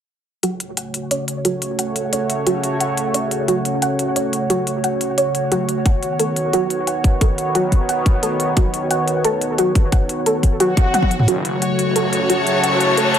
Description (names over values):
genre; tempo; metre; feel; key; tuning
dark technical drum and bass; 177 BPM; 4/4; straight; F# dorian; A4 = 440 Hz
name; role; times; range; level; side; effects
sweeping resonant pad; sustained chords; 0.4-13.2 s; C#3 to C#5; -21 LUFS; right 1 dB; chorus, vintage 12-bit sampler grit, sidechain pumping
soft round pluck; arpeggios; 0.4-13.1 s; F#4 to F#5; -22 LUFS; right 1 dB; wide subtle chorus, sidechain pumping, dub echo
drum and bass drum kit; drums; 0.4-13.2 s; hi-hat, toms; -22 LUFS; left 1 dB; high-pass filter on hats, small room ambience, high-pass filter on toms
electronic kick drum; drums; 5.9-11.1 s; none; -15 LUFS; equal; small room ambience
swell and riser; sound effects; 10.7-13.2 s; none; -25 LUFS; equal; none
wide detuned saw bass; bass; 11.3-13.2 s; E1 to F#1; -28 LUFS; equal; chorus, tube saturation, high-pass filter
clear symphonic string section; texture; 11.3-13.2 s; F#4 to A5; -18 LUFS; left 2 dB; sidechain pumping
room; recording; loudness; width
moderate digital room reverb, RT60 1.1 s, digital ambience; none; -16 LUFS; side -9 dB against mid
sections
0.4-11.3 A section; 11.3-13.2 B section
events
filter sweep on synth pluck 0.4-11.3, 11.3-13.2; swell 10.7-11.3; drum fill 10.9-11.3; build-up 11.3-13.2; riser 11.3-13.2; filter sweep 11.3-13.2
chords
0.4 F#m; 5.9 Badd9; 11.3 F#m